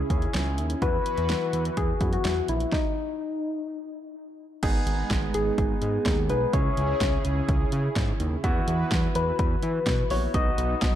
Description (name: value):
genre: synth-pop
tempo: 126 BPM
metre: 4/4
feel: straight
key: G# minor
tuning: A4 = 439 Hz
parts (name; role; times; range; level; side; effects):
- clear baby grand piano; accompaniment; 0.0-11.0 s; B3 to G#4; -34 LUFS; right 2 dB; none
- brassy analog pad; sustained chords; 0.0-11.0 s; C#3 to B4; -33 LUFS; right 1 dB; chorus
- fat analog bass; bass; 0.0-11.0 s; G#1 to E3; -28 LUFS; equal; none
- deep house drum kit; drums; 0.1-10.9 s; crash cymbal, hi-hat, kick drum, snare drum; -27 LUFS; equal; overdrive
- soft struck synth lead; melody; 0.8-11.0 s; D#4 to D#5; -29 LUFS; left 3 dB; chorus, phaser, analog delay
room: light reverb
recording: dark, warm production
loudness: -23 LUFS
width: side -11 dB against mid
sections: 0.0-4.6 A section; 4.6-11.0 B section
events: stop 2.7-4.6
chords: 0.0 C#m; 0.8 Esus2; 2.7 N.C.; 4.6 G#m; 6.5 C#m; 8.4 Esus2; 10.3 B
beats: 0.34 | 0.82 1.29 1.77 2.25 | 2.72 3.20 3.68 4.15 | 4.63 5.11 5.58 6.06 | 6.53 7.01 7.49 7.96 | 8.44 8.91 9.39 9.87 | 10.34 10.82